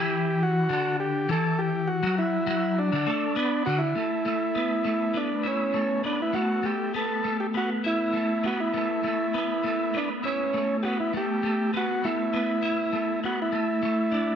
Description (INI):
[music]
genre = rock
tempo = 100 BPM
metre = 4/4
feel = straight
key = A mixolydian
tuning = A4 = 440 Hz
[part]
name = combo organ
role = melody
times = 0.0-14.4 s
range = C#4 to A4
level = -27 LUFS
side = right 1 dB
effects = slapback echo
[part]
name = twelve-string electric guitar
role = riff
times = 0.0-14.4 s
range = D3 to E4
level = -26 LUFS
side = left 1 dB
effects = rotary speaker, double-tracked left and right
[sound]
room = light reverb, digital ambience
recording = none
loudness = -24 LUFS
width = side -8 dB against mid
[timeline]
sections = 0.0-4.0 A section; 4.0-14.4 B section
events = none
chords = 0.0 D5; 4.0 Asus2; 13.5 D5/A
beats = 0.41 1.00 | 1.59 2.18 2.77 3.37 | 3.96 4.56 5.16 5.75 | 6.35 6.95 7.54 8.14 | 8.74 9.34 9.94 10.54 | 11.14 11.74 12.34 12.94 | 13.54 14.13